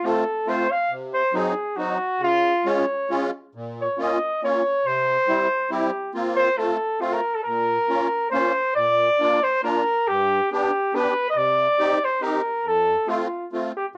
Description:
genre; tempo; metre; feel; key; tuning
alpine folk, alpine dance band; 138 BPM; 3/4; rubato; Bb minor, Bb major from 8.8 s; A4 = 439 Hz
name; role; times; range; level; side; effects
warm flugelhorn; melody; 0.0-13.9 s; F4 to F5; -23 LUFS; equal; cassette tape
musette accordion; accompaniment; 0.0-13.7 s; F2 to G4; -28 LUFS; equal; cassette tape
room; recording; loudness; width
moderate small room reverb, RT60 0.6 s; home recording on cassette; -22 LUFS; mono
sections
0.0-8.8 A section; 8.8-14.0 B section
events
none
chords
0.0 F; 0.9 Cdim; 2.2 Db; 3.5 Bbm; 4.8 C; 6.1 Fsus4; 6.6 F; 7.4 Bbm; 8.8 Bb; 10.1 G; 11.4 Cm; 12.6 F

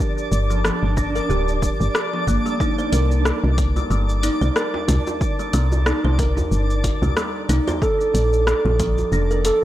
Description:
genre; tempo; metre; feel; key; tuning
organic downtempo; 92 BPM; 4/4; swing 56% on 16ths; unclear; A4 = 439 Hz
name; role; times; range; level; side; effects
kalimba; arpeggios; 0.0-9.6 s; F3 to C5; -23 LUFS; right 1 dB; low-pass filter, analog delay
deep house drum kit; drums; 0.0-9.6 s; hi-hat, rim click, shaker; -26 LUFS; left 1 dB; overdrive
twinkling granular texture; texture; 0.0-9.6 s; D4 to D5; -28 LUFS; right 1 dB; built-in reverb
woody FM bass; bass; 0.3-9.5 s; D1 to C2; -19 LUFS; equal; transformer saturation
electronic kick drum; drums; 1.0-8.9 s; none; -24 LUFS; equal; none
djembe; percussion; 3.4-9.1 s; none; -30 LUFS; right 2 dB; none
room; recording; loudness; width
light reverb, digital ambience; dry, gritty hardware recording, transformer saturation; -17 LUFS; side -14 dB against mid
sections
0.0-9.6 A section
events
none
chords
0.0 G7(no3); 2.6 C7(no3); 7.8 Bbmaj7

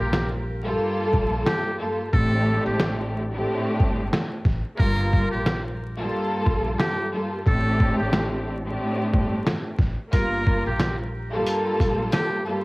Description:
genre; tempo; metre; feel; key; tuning
hip hop, boom-bap hip-hop; 90 BPM; 4/4; swing 57% on 16ths; G minor; A4 = 438 Hz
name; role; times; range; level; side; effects
trumpet with metal mute; melody; 0.0-12.4 s; G4 to Bb4; -29 LUFS; equal; high-pass filter, low-pass filter, cassette tape, analog delay
warm studio string section; accompaniment; 0.0-12.6 s; G2 to Bb4; -25 LUFS; equal; cassette tape, high-pass filter, low-pass filter
upright bass; bass; 0.0-12.1 s; G1 to Bb1; -28 LUFS; equal; none
trip hop sampler-style drum kit; drums; 0.1-12.3 s; hi-hat, kick drum, snare drum; -23 LUFS; equal; cassette tape
room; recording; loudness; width
moderate spring reverb, RT60 1.7 s; home recording on cassette, vinyl crackle; -21 LUFS; side -24 dB against mid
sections
0.0-12.6 A section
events
break 0.0-10.1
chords
0.0 Gm7; 2.1 D7sus4/A; 4.8 Gm7; 7.5 D7sus4/A; 10.1 Gm7

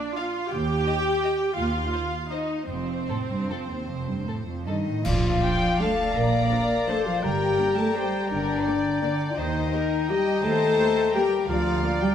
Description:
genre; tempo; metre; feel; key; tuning
classical, orchestral ballroom waltz; 145-186 BPM; 3/4; rubato; Bb major; A4 = 440 Hz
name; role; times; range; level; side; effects
warm studio violin section; second line; 0.0-12.1 s; C5 to Bb5; -34 LUFS; left 1 dB; none
warm studio viola section; accompaniment; 0.0-11.9 s; F3 to G4; -30 LUFS; right 1 dB; none
rich studio violin section; melody; 0.2-12.1 s; A4 to G5; -32 LUFS; left 2 dB; none
dark studio cello section; bass; 0.5-12.1 s; Eb2 to Bb3; -29 LUFS; right 2 dB; none
warm studio double bass section; bass; 0.5-11.8 s; F1 to Eb2; -31 LUFS; right 3 dB; none
clear French horn section; sustained chords; 4.7-12.1 s; D4 to Bb4; -25 LUFS; left 5 dB; none
clear clarinet; second line; 5.1-12.1 s; D5 to Eb5; -36 LUFS; left 2 dB; none
concert flute; second line; 5.1-12.1 s; F5 to Bb5; -32 LUFS; left 3 dB; none
mellow cor anglais; second line; 5.1-12.1 s; D5 to G5; -35 LUFS; right 2 dB; none
clash cymbals and concert bass drum; percussion; 5.1-5.8 s; none; -31 LUFS; equal; none
room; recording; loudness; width
wet scoring stage reverb, RT60 1.9 s; none; -22 LUFS; side -9 dB against mid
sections
0.0-5.1 A section; 5.1-12.1 B section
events
band accent 5.1-5.4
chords
0.0 Bb (rootless); 0.5 Eb; 1.6 N.C.; 2.7 F; 5.1 Bb; 7.2 Gm; 9.4 Eb; 11.5 Bb/D

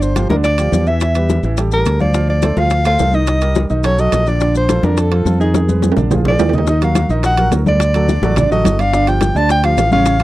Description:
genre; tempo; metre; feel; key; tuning
Afro-Cuban jazz; 212 BPM; 4/4; straight; unclear; A4 = 442 Hz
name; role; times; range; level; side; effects
warm soprano saxophone; melody; 0.0-10.2 s; Ab4 to A5; -18 LUFS; left 1 dB; none
warm baby grand piano; accompaniment; 0.0-10.2 s; Db3 to F5; -20 LUFS; right 3 dB; none
modern bright fingered electric bass; bass; 0.0-10.2 s; G1 to F2; -16 LUFS; equal; none
bongos; percussion; 0.0-10.2 s; none; -24 LUFS; left 6 dB; none
congas; percussion; 0.0-10.2 s; none; -21 LUFS; left 1 dB; none
maracas; percussion; 0.0-10.2 s; none; -33 LUFS; left 9 dB; none
timbales; percussion; 0.2-10.2 s; none; -22 LUFS; right 8 dB; none
room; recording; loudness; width
little or no reverb; dry, close 1970s-style studio recording; -12 LUFS; side -16 dB against mid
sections
0.0-6.7 A section; 6.7-10.2 B section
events
drum fill 5.5-6.7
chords
0.0 G5; 1.0 Em; 1.6 Gm9/A; 2.1 Dm7; 3.3 Cm7; 3.8 B7; 4.4 Bbmaj7; 5.5 Fm7b5; 6.1 Bb7; 6.7 Ebmadd9; 7.8 D; 8.9 Gsus2

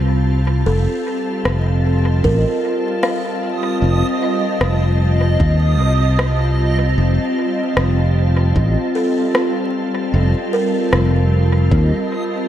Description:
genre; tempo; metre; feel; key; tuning
ambient dub; 76 BPM; 4/4; swing 56% on 16ths; unclear; A4 = 439 Hz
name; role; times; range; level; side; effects
soft additive organ-like pad; sustained chords; 0.0-12.5 s; G3 to A5; -20 LUFS; equal; ensemble chorus, built-in reverb
fingered electric bass; bass; 0.0-11.9 s; F1 to Eb2; -14 LUFS; equal; tube saturation
buzzing kalimba; arpeggios; 0.7-12.4 s; A4 to F5; -24 LUFS; right 1 dB; dub echo
backwards swelling texture; texture; 0.7-12.5 s; Eb5; -27 LUFS; right 2 dB; built-in reverb
electronic rim click; drums; 1.5-11.1 s; none; -23 LUFS; left 1 dB; overdrive, small room ambience, dub echo
electronic kick drum; drums; 2.2-11.9 s; none; -19 LUFS; equal; overdrive, small room ambience
room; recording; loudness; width
light reverb, digital ambience; vinyl crackle; -14 LUFS; side -11 dB against mid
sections
0.0-12.5 A section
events
none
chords
0.0 F; 0.7 Ebadd9/F

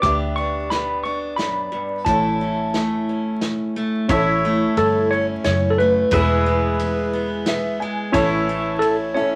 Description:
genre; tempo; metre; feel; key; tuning
honky-tonk and classic country; 89 BPM; 3/4; straight; A major; A4 = 441 Hz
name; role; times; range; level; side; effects
tine electric piano; melody; 0.0-9.4 s; A4 to D6; -24 LUFS; equal; none
honky-tonk upright piano; accompaniment; 0.0-9.4 s; B3 to G#5; -28 LUFS; equal; none
picked steel-string acoustic guitar; accompaniment; 0.0-9.4 s; E2 to G#4; -26 LUFS; equal; none
vintage muted fingered electric bass; bass; 0.0-9.4 s; E1 to D2; -28 LUFS; equal; none
natural country drum kit; drums; 0.0-9.0 s; hi-hat, kick drum, ride cymbal, snare drum; -31 LUFS; equal; none
pedal steel guitar; sustained chords; 4.1-9.4 s; B4 to E5; -28 LUFS; equal; none
room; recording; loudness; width
wet studio reverb, RT60 0.6 s; vinyl crackle; -20 LUFS; mono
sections
0.0-4.1 A section; 4.1-9.4 B section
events
honky-tonk piano fill 7.1-8.1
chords
0.0 G; 2.1 A; 6.1 E; 8.1 A

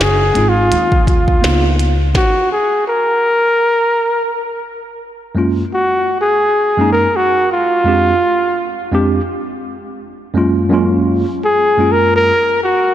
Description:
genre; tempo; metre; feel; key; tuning
hip hop, jazz-hop; 84 BPM; 4/4; swing 57% on 16ths; F phrygian; A4 = 442 Hz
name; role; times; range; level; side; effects
breathy flugelhorn; melody; 0.0-12.9 s; F4 to Bb4; -14 LUFS; equal; none
upright bass; bass; 0.0-2.1 s; Gb1 to Eb2; -16 LUFS; equal; none
glitchy drum kit; drums; 0.0-2.3 s; hi-hat, kick drum, snare drum; -17 LUFS; equal; none
mellow tine electric piano; accompaniment; 0.3-12.3 s; F2 to G4; -17 LUFS; right 1 dB; medium stereo tremolo
room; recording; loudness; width
moderate huge ambient reverb, RT60 3.7 s; dreamy mix soaked in reverb; -12 LUFS; side -11 dB against mid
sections
0.0-5.0 A section; 5.0-12.9 B section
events
stop 2.1-5.0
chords
0.0 Fm7; 1.4 Db13; 2.1 N.C.; 5.0 Gbmaj7; 7.9 Fm69; 10.0 Gbmaj7

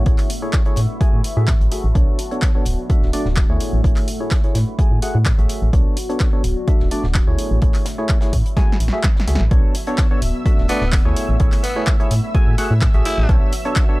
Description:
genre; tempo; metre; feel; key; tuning
piano house; 127 BPM; 4/4; straight; unclear; A4 = 440 Hz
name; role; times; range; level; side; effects
percussive organ stab; riff; 0.0-14.0 s; A3 to G#5; -26 LUFS; equal; lush chorus, sidechain pumping, analog delay
organ-like FM bass; bass; 0.0-13.4 s; D1 to A2; -18 LUFS; equal; sidechain pumping
deep dark ambient pad; texture; 0.0-14.0 s; A3 to C#6; -30 LUFS; left 1 dB; chorus, built-in reverb, sidechain pumping
deep reggae drum kit; drums; 0.1-13.9 s; hi-hat, snare drum; -38 LUFS; left 2 dB; none
electronic kick drum; drums; 0.1-13.9 s; none; -16 LUFS; equal; overdrive
punchy analog drum machine; drums; 0.2-13.9 s; handclaps, hi-hat, snare drum; -26 LUFS; equal; overdrive
analog string pad; sustained chords; 9.8-14.0 s; E5 to E6; -32 LUFS; equal; ensemble chorus, phaser, vintage 12-bit sampler grit, sidechain pumping
breathy tenor saxophone; melody; 10.7-13.3 s; B3 to E4; -25 LUFS; equal; analog delay
room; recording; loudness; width
small room ambience; dry, gritty hardware recording; -15 LUFS; side -20 dB against mid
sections
0.0-9.5 A section; 9.5-14.0 B section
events
drum fill 8.6-9.5; drop 9.5-14.0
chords
0.0 F#m9/A; 2.0 Bm9; 2.7 Dmaj7; 3.6 F#m9/A; 5.7 Bm9; 6.4 Dmaj7; 7.4 F#m9/A; 9.5 Bm9; 10.2 Dmaj7; 11.2 F#m9/A; 13.3 Bm9

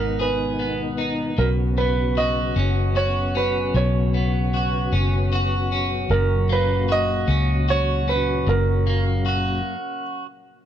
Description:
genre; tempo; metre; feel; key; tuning
six-eight pop ballad; 51 BPM (dotted quarters); 6/8; straight; B major; A4 = 440 Hz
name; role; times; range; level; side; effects
warm baby grand piano; melody; 0.0-10.0 s; A#4 to D#5; -25 LUFS; right 4 dB; none
electric guitar at the edge of break-up; accompaniment; 0.0-10.2 s; F#2 to G#4; -26 LUFS; equal; double-tracked left and right
tonewheel organ; sustained chords; 0.0-9.6 s; A#2 to F#4; -29 LUFS; left 3 dB; chorus vibrato, slow rotary speaker
vintage muted fingered electric bass; bass; 0.0-9.6 s; F#1 to C#2; -22 LUFS; equal; none
room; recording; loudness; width
little or no reverb; dry, close 1970s-style studio recording; -19 LUFS; side -10 dB against mid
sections
0.0-1.4 A section; 1.4-10.7 B section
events
stop 9.7-10.7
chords
0.0 G#m; 1.4 Bsus2; 6.1 F#

